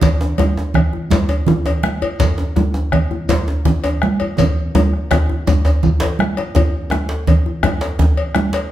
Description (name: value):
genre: west african traditional, West African drum ensemble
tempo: 110 BPM (dotted quarters)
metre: 12/8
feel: straight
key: none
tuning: none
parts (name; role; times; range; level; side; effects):
- bombo; percussion; 0.0-8.5 s; none; -20 LUFS; left 1 dB; none
- congas; percussion; 0.0-8.5 s; none; -20 LUFS; right 4 dB; none
- cowbell; percussion; 0.0-8.7 s; none; -25 LUFS; left 4 dB; none
- djembe; percussion; 0.0-8.5 s; none; -23 LUFS; left 4 dB; none
- djembe; percussion; 0.0-8.7 s; none; -19 LUFS; equal; none
- shekere; percussion; 0.0-5.9 s; none; -26 LUFS; right 1 dB; none
room: wet large studio reverb, RT60 1.2 s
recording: band playing live in one room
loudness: -14 LUFS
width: side -12 dB against mid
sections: 0.0-6.6 A section; 6.6-8.7 B section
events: drum fill 4.4-6.6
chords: none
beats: | 0.02 0.57 1.11 1.66 | 2.21 2.75 3.29 3.84 | 4.38 4.93 5.47 6.01 | 6.55 7.09 7.64 8.18